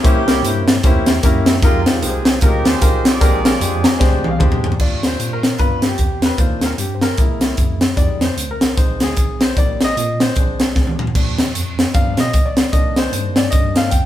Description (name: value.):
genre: uptempo gospel.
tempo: 151 BPM.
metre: 4/4.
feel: swing 59% on 8ths.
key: Eb major.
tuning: A4 = 436 Hz.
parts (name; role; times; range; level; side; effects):
warm horn section; melody; 0.0-4.4 s; Ab3 to D5; -24 LUFS; right 3 dB; none.
warm concert grand piano; accompaniment; 0.0-14.1 s; Bb2 to Bb5; -21 LUFS; left 2 dB; none.
mellow tine electric piano; bass; 0.0-14.1 s; Bb1 to B2; -23 LUFS; equal; medium stereo tremolo.
crisp fusion drum kit; drums; 0.0-14.0 s; crash cymbal, hi-hat, kick drum, snare drum, toms; -15 LUFS; equal; none.
room: moderate stone room reverb, RT60 1.1 s.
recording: band playing live in one room.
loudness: -13 LUFS.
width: side -12 dB against mid.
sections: 0.0-4.8 A section; 4.8-14.1 B section.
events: grand piano fill 3.6-4.8; drum fill 4.0-4.8, 10.8-11.1; grand piano solo 4.8-14.1.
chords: 0.0 C7b9; 1.6 Fm11; 3.2 Bb13; 4.8 Ebmaj9; 5.6 G7; 6.4 Ebmaj13; 7.2 C7b13; 8.0 Fm9; 8.8 Bb9sus4; 9.6 Eb/Bb; 10.4 Bb9; 11.1 Ebmaj9; 11.9 G7; 12.7 Cm9.